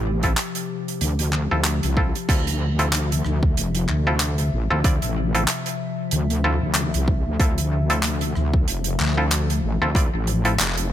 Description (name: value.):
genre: glitch hop.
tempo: 94 BPM.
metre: 4/4.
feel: swing 57% on 16ths.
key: D minor.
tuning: A4 = 441 Hz.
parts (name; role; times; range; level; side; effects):
warbly tape-like pad; sustained chords; 0.0-10.9 s; C3 to E5; -29 LUFS; left 5 dB; chorus, built-in reverb, sidechain pumping.
wobble bass; bass; 0.0-10.9 s; F1 to D2; -22 LUFS; equal; chorus, overdrive.
muted clav; stabs; 0.2-10.5 s; C4 to D5; -26 LUFS; equal; sidechain pumping, digital delay.
electronic kick drum; drums; 0.2-10.1 s; none; -20 LUFS; equal; overdrive.
modern studio drum kit; drums; 0.2-10.9 s; crash cymbal, handclaps, hi-hat, rim click; -25 LUFS; right 1 dB; none.
room: little or no reverb.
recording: none.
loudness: -19 LUFS.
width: side -11 dB against mid.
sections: 0.0-10.9 A section.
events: none.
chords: 0.0 Dm9.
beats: 0.38 1.01 1.65 | 2.29 2.93 3.57 4.21 | 4.84 5.48 6.12 6.76 | 7.40 8.04 8.67 9.31 | 9.95 10.59.